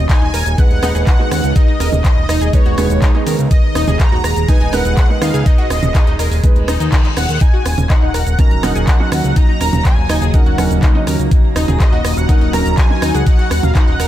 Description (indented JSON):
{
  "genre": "progressive house",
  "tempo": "123 BPM",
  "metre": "4/4",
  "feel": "straight",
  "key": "Eb minor",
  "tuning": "A4 = 440 Hz",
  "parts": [
    { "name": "wide unison lead", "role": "melody", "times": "0.0-14.1 s", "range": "Db5 to Bb5", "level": "-22 LUFS", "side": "equal", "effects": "ensemble chorus, sidechain pumping, ping-pong delay" },
    { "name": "evolving wavetable pad", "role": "sustained chords", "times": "0.0-14.1 s", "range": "Cb3 to Ab4", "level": "-25 LUFS", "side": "left 1 dB", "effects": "phaser, built-in reverb, sidechain pumping" },
    { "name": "fat analog bass", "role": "bass", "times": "0.0-14.1 s", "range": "Eb1 to Eb2", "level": "-17 LUFS", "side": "equal", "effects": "tube saturation, sidechain pumping" },
    { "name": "analog pluck", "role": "arpeggios", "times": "0.1-14.1 s", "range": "Eb3 to Bb5", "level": "-24 LUFS", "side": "left 2 dB", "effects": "chorus, sidechain pumping, ping-pong delay" },
    { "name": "deep house drum kit", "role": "drums", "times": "0.1-14.1 s", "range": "cabasa, handclaps, hi-hat", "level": "-25 LUFS", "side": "equal", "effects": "none" },
    { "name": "electronic kick drum", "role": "drums", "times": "0.1-13.9 s", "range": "none", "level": "-12 LUFS", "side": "equal", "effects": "none" },
    { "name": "punchy analog drum machine", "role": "percussion", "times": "0.3-14.1 s", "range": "congas, rim click, toms", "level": "-23 LUFS", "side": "right 4 dB", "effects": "sidechain pumping on toms, sidechain pumping on perc, sidechain pumping on snare" },
    { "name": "felt-muted upright piano", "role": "stabs", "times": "0.6-14.1 s", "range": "Gb3 to Eb5", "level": "-22 LUFS", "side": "right 5 dB", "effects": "sidechain pumping, ping-pong delay" },
    { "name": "reverse cymbal", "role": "sound effects", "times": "6.6-7.4 s", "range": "none", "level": "-28 LUFS", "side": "left 6 dB", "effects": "none" },
    { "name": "twinkling granular texture", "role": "texture", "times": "7.8-14.1 s", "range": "Bb5", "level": "-33 LUFS", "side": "right 3 dB", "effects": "none" }
  ],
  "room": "little or no reverb",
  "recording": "none",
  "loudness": "-11 LUFS",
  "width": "side -12 dB against mid",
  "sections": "0.0-14.1 A section",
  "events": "reverse cymbal 6.6-7.4",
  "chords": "0.0 Abm/Eb; 7.4 Ebm7"
}